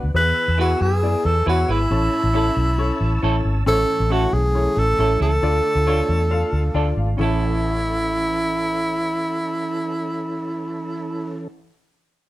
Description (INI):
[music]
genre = soul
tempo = 136 BPM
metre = 4/4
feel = straight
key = A major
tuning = A4 = 440 Hz
[part]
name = warm upright piano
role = accompaniment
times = 0.0-11.6 s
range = A1 to A5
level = -28 LUFS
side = left 4 dB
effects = none
[part]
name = mellow tonewheel organ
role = sustained chords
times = 0.0-11.5 s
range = E3 to E6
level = -32 LUFS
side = right 2 dB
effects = slow rotary speaker, chorus vibrato
[part]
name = vintage muted fingered electric bass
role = bass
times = 0.0-11.6 s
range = G#1 to F#2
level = -21 LUFS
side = equal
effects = none
[part]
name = breathy tenor saxophone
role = melody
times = 0.2-11.5 s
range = E4 to B4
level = -21 LUFS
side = right 1 dB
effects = none
[part]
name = semi-hollow electric guitar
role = stabs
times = 0.6-11.7 s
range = C#4 to B4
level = -29 LUFS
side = right 7 dB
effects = none
[sound]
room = light reverb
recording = none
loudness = -18 LUFS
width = side -16 dB against mid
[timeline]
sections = 0.0-3.7 A section; 3.7-7.2 B section; 7.2-10.7 C section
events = upright piano fill 6.5-7.2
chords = 0.1 E; 1.9 A; 5.4 Dm; 7.2 A